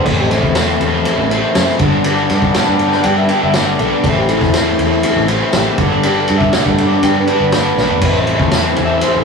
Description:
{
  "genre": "psychedelic rock",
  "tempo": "120 BPM",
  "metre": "4/4",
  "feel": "straight",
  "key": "A minor",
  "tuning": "A4 = 438 Hz",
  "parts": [
    { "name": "overdriven combo organ", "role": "melody", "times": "0.0-9.2 s", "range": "E4 to G5", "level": "-19 LUFS", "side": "left 2 dB", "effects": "spring reverb" },
    { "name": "phased string machine", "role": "sustained chords", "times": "0.0-9.2 s", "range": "B4 to C6", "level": "-25 LUFS", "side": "right 1 dB", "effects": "ensemble chorus, phaser" },
    { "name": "biting overdriven guitar", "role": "riff", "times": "0.0-9.2 s", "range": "G2 to E4", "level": "-15 LUFS", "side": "left 1 dB", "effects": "harmonic tremolo" },
    { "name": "fingered electric bass", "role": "bass", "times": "0.1-9.2 s", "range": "G1 to G2", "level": "-19 LUFS", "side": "equal", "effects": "none" },
    { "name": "vintage drum kit", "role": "drums", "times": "0.1-9.1 s", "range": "crash cymbal, kick drum, ride cymbal, snare drum, toms", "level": "-18 LUFS", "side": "equal", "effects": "none" },
    { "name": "tambourine", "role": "percussion", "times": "0.6-8.7 s", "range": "none", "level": "-30 LUFS", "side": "left 6 dB", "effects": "none" }
  ],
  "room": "light reverb",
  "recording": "rough rehearsal-room recording, tube saturation, studio ambience",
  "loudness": "-11 LUFS",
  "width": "side -5 dB against mid",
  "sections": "0.0-9.2 A section",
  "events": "transistor combo organ solo 0.0-9.2; drum fill 7.8",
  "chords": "0.1 Am; 1.8 G; 4.0 Am; 5.8 G; 8.0 Am"
}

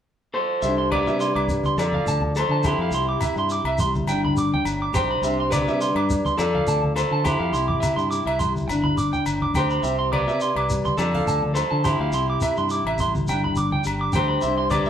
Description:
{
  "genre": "highlife guitar band",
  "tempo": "104 BPM",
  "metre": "4/4",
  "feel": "swing 54% on 16ths",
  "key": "C major",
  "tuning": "A4 = 439 Hz",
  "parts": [
    { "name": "electric guitar at the edge of break-up", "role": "melody", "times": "0.3-14.9 s", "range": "E4 to D5", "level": "-25 LUFS", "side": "equal", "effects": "none" },
    { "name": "fingerpicked steel-string acoustic guitar", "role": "accompaniment", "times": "0.6-14.9 s", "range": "G2 to A4", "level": "-28 LUFS", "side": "left 3 dB", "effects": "none" },
    { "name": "electric guitar at the edge of break-up", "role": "arpeggios", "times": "0.6-14.9 s", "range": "E5 to D6", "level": "-26 LUFS", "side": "right 4 dB", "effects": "none" },
    { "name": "fingered electric bass", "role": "bass", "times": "0.6-14.9 s", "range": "G1 to D3", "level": "-27 LUFS", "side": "equal", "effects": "none" },
    { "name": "shekere", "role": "percussion", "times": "0.6-14.9 s", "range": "none", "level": "-32 LUFS", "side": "equal", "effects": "none" },
    { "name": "agogo bells", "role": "percussion", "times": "0.9-14.9 s", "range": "none", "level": "-32 LUFS", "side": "left 2 dB", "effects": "none" },
    { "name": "congas", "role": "percussion", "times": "0.9-14.9 s", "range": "none", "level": "-29 LUFS", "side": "equal", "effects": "none" }
  ],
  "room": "wet studio reverb, RT60 0.8 s",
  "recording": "band playing live in one room",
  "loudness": "-20 LUFS",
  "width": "side -9 dB against mid",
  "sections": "0.6-14.9 A section",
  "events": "none",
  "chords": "0.0 N.C.; 0.6 Cadd9; 1.8 F; 2.9 Cadd9; 4.1 G; 5.2 Cadd9; 6.4 F; 7.5 Cadd9; 8.7 G; 9.8 Cadd9; 11.0 F; 12.1 Cadd9; 13.3 G"
}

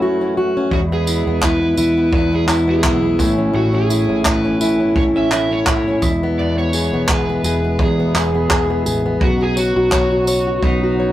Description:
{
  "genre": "acoustic pop",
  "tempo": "85 BPM",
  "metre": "4/4",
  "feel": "swing 55% on 16ths",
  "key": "E major",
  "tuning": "A4 = 440 Hz",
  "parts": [
    { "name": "overdriven slide guitar", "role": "melody", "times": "0.0-11.1 s", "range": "D#4 to E5", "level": "-23 LUFS", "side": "right 2 dB", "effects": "none" },
    { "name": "fingerpicked plugged-in steel-string acoustic guitar", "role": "accompaniment", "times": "0.0-11.1 s", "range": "E2 to C#5", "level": "-17 LUFS", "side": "left 1 dB", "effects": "none" },
    { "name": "percussive tonewheel organ", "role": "sustained chords", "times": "0.0-11.1 s", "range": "B2 to F#4", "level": "-27 LUFS", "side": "right 1 dB", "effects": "overdrive, chorus vibrato, slow rotary speaker" },
    { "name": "vintage muted fingered electric bass", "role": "bass", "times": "0.7-11.1 s", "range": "E1 to E2", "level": "-24 LUFS", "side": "equal", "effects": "none" },
    { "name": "vintage brush drum kit", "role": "drums", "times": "0.7-10.8 s", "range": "handclaps, kick drum, tambourine", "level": "-19 LUFS", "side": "right 1 dB", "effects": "none" }
  ],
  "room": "moderate small room reverb, RT60 0.5 s",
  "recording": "rough rehearsal-room recording, warm saturation",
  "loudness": "-14 LUFS",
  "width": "side -13 dB against mid",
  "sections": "0.0-11.1 A section",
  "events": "drum fill 10.6-11.1",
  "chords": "0.0 F#m7; 0.7 E; 3.2 Aadd9; 6.0 E; 9.2 Badd9"
}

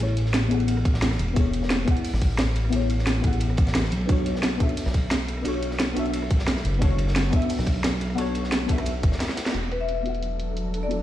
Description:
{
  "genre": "liquid drum and bass",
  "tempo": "176 BPM",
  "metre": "4/4",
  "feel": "straight",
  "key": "B dorian",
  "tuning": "A4 = 440 Hz",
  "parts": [
    { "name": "deep mellow chord stab", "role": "accompaniment", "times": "0.0-11.0 s", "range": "B3 to F#5", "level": "-29 LUFS", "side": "left 3 dB", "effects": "chorus, tape echo" },
    { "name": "smooth synth bass", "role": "bass", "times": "0.0-11.0 s", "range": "E1 to B1", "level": "-25 LUFS", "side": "equal", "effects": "none" },
    { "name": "crunchy breakbeat drum kit", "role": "drums", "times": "0.0-9.5 s", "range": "hi-hat, ride cymbal, snare drum", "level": "-35 LUFS", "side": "equal", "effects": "high-pass filter on cymbals, high-pass filter on hats, high-pass filter on snare, high-pass filter on room" },
    { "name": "drum and bass drum kit", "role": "drums", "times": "0.0-11.0 s", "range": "hi-hat, rim click, snare drum", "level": "-28 LUFS", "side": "right 1 dB", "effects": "low-pass filter on hats, low-pass filter on snare" },
    { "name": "electronic kick drum", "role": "drums", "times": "0.9-9.1 s", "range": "none", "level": "-22 LUFS", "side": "equal", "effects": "none" },
    { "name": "shimmering ambient pad", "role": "sustained chords", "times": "10.2-11.0 s", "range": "F#3 to A4", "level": "-33 LUFS", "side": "left 1 dB", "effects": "chorus, built-in reverb, sidechain pumping" },
    { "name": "marimba with medium hard mallets", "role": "melody", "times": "9.7-11.0 s", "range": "B4 to E5", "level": "-30 LUFS", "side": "left 6 dB", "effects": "tape echo" }
  ],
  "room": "light reverb, small room ambience",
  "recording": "played on a big sound system in a bare room, stone room reverb",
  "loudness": "-21 LUFS",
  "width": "side -13 dB against mid",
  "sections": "0.0-9.5 A section; 9.5-11.0 B section",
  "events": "filter sweep on synth stab 0.0-9.5, 9.5-11.0; drum fill 9.2-9.5; band accent 9.5; filter sweep on drum 9.5-11.0",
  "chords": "0.0 Amaj9; 4.1 Bm9; 9.5 E9sus4"
}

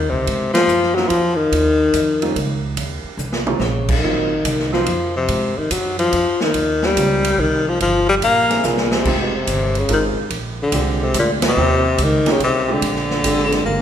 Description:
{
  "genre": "jazz, small-group swing and bop",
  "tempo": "143 BPM",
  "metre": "3/4",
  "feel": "swing 67% on 8ths",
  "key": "unclear",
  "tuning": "A4 = 440 Hz",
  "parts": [
    { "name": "warm tenor saxophone", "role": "melody", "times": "0.0-13.8 s", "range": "Bb2 to Bb3", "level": "-17 LUFS", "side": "left 2 dB", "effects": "none" },
    { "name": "upright bass", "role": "bass", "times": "0.0-13.8 s", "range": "F1 to Ab2", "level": "-24 LUFS", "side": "right 1 dB", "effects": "none" },
    { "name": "swinging big-band drum kit", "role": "drums", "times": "0.3-13.6 s", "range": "crash cymbal, hi-hat, kick drum, ride cymbal, snare drum, toms", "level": "-23 LUFS", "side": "right 2 dB", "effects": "none" },
    { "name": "clear baby grand piano", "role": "accompaniment", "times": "1.0-4.9, 7.0-13.8 s", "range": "Gb3 to Bb4", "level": "-25 LUFS", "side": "right 4 dB", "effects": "none" }
  ],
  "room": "wet recital hall reverb, RT60 1.3 s",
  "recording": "recorded in a church or concert hall",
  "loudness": "-15 LUFS",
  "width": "side -9 dB against mid",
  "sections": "0.0-13.8 A section",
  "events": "band accent 0.5, 3.8, 11.4; drum fill 3.2-3.6, 8.6-9.1, 13.7",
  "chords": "0.3 Ab13; 1.5 Eb13; 4.0 Ab13; 6.5 Eb13; 7.8 Gm; 8.6 C7alt; 9.1 Fm7; 10.3 Bb13; 11.6 Eb13; 12.8 Bb13"
}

